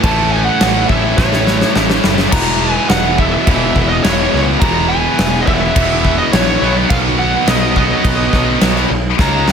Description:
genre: hard rock.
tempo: 105 BPM.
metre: 4/4.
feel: straight.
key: unclear.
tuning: A4 = 440 Hz.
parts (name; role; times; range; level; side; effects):
smooth overdriven lead guitar; melody; 0.0-9.5 s; C#5 to Bb5; -19 LUFS; right 1 dB; none.
distorted electric guitar; riff; 0.0-9.5 s; A2 to F4; -21 LUFS; left 1 dB; overdrive.
heavy high-gain guitar; riff; 0.0-9.5 s; E2 to Db4; -20 LUFS; left 15 dB; distortion.
high-gain distorted guitar; riff; 0.0-9.5 s; E2 to Db4; -19 LUFS; right 12 dB; distortion.
fuzz picked electric bass; bass; 0.0-9.5 s; E1 to Db2; -19 LUFS; equal; overdrive.
huge arena drum kit; drums; 0.0-9.5 s; crash cymbal, kick drum, snare drum; -16 LUFS; equal; none.
room: small room ambience.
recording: none.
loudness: -11 LUFS.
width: side -7 dB against mid.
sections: 0.0-9.5 A section.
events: drum fill 1.2-2.3, 9.2-9.5.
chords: 0.0 A; 2.3 E; 6.6 Cb.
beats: | 0.04 0.61 1.19 1.76 | 2.33 2.90 3.48 4.05 | 4.62 5.19 5.76 6.33 | 6.91 7.48 8.05 8.62 | 9.19.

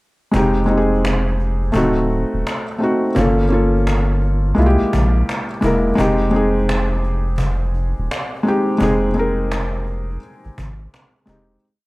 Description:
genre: lo-fi hip hop.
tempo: 85 BPM.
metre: 4/4.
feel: swing 66% on 16ths.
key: F minor.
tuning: A4 = 439 Hz.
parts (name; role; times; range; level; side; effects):
felt-muted upright piano; accompaniment; 0.3-11.6 s; Ab3 to Bb4; -18 LUFS; equal; none.
saturated sub bass; bass; 0.3-11.6 s; D1 to C2; -19 LUFS; equal; none.
cajon; drums; 0.3-11.6 s; none; -26 LUFS; equal; none.
room: light reverb, small room ambience.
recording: cassette tape.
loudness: -15 LUFS.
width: side -21 dB against mid.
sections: 0.3-11.6 A section.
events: fade-out 8.8-11.6.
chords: 0.3 Fm9; 1.7 D7b9; 3.2 Gm7b5; 4.6 C7b13; 6.0 Fm9.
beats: | 0.33 1.04 1.74 2.45 | 3.16 3.86 4.57 5.27 | 5.98 6.68 7.39 8.10 | 8.80 9.51 10.21 10.92.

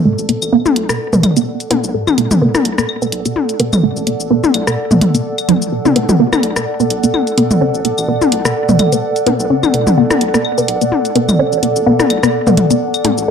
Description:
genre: minimal techno.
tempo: 127 BPM.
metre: 4/4.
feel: swing 56% on 16ths.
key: B minor.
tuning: A4 = 441 Hz.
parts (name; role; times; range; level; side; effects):
rubbery square bass; bass; 0.0-13.3 s; F#1 to B1; -26 LUFS; equal; high-pass filter.
warbly tape-like pad; texture; 0.0-13.3 s; A4 to F#5; -19 LUFS; right 1 dB; chorus, built-in reverb.
resonant blip pluck; riff; 0.1-13.3 s; F#3 to F#4; -16 LUFS; right 1 dB; phaser, vintage 12-bit sampler grit, tape echo.
electronic cabasa and hi-hat; drums; 0.2-13.3 s; none; -22 LUFS; left 1 dB; none.
organic electronic drum kit; percussion; 0.4-13.2 s; claves, rim click, toms; -15 LUFS; left 2 dB; tape echo.
room: moderate digital room reverb, RT60 1.0 s, digital ambience.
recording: dark, warm production.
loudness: -11 LUFS.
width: side -7 dB against mid.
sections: 0.0-13.3 A section.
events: none.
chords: 0.0 Bm7.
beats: 0.05 | 0.53 1.00 1.47 1.94 | 2.42 2.89 3.36 3.83 | 4.30 4.78 5.25 5.72 | 6.20 6.67 7.14 7.61 | 8.09 8.56 9.03 9.50 | 9.97 10.45 10.92 11.39 | 11.86 12.34 12.81 13.28.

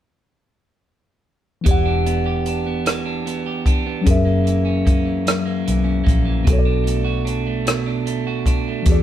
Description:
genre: slow six-eight R&B.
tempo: 50 BPM (dotted quarters).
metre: 6/8.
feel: straight.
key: E minor.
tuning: A4 = 441 Hz.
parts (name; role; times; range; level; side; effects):
electric guitar at the edge of break-up; second line; 1.6-9.0 s; F#2 to G4; -24 LUFS; right 4 dB; none.
mellow tine electric piano; accompaniment; 1.6-9.0 s; B2 to F#5; -22 LUFS; left 2 dB; none.
vintage muted fingered electric bass; bass; 1.7-9.0 s; E1 to E2; -22 LUFS; equal; none.
compact cocktail drum kit; drums; 1.7-9.0 s; hi-hat, kick drum, rim click; -18 LUFS; equal; none.
room: moderate stone room reverb, RT60 1.1 s.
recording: band playing live in one room.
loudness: -17 LUFS.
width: side -11 dB against mid.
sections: 1.7-9.0 A section.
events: none.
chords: 1.7 Em7; 4.1 F#7; 6.5 Bm7.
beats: | 1.67 2.87 | 4.07 5.26 | 6.46 7.67 | 8.87.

